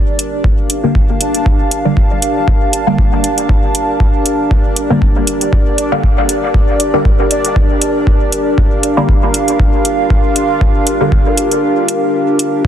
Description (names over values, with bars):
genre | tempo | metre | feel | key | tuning
dub techno | 118 BPM | 4/4 | swing 55% on 16ths | G minor | A4 = 439 Hz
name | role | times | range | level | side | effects
dark analog pad | sustained chords | 0.0-12.7 s | D4 to F5 | -16 LUFS | equal | chorus, vintage 12-bit sampler grit, sidechain pumping
bubbling stepped-filter texture | texture | 0.0-12.7 s | D4 to A5 | -22 LUFS | right 1 dB | chorus, built-in reverb, sidechain pumping
electronic hi-hat | drums | 0.2-12.5 s | none | -16 LUFS | equal | overdrive
electronic kick drum | drums | 0.4-12.7 s | none | -13 LUFS | equal | overdrive
filtered dub chord stab | stabs | 0.8-11.2 s | D3 to Bb3 | -17 LUFS | left 1 dB | phaser, sidechain pumping, dub echo
room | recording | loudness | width
light reverb | dense, heavily limited modern master | -10 LUFS | side -10 dB against mid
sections
0.0-12.7 A section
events
kick drops out 11.6-12.6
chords
0.0 Gm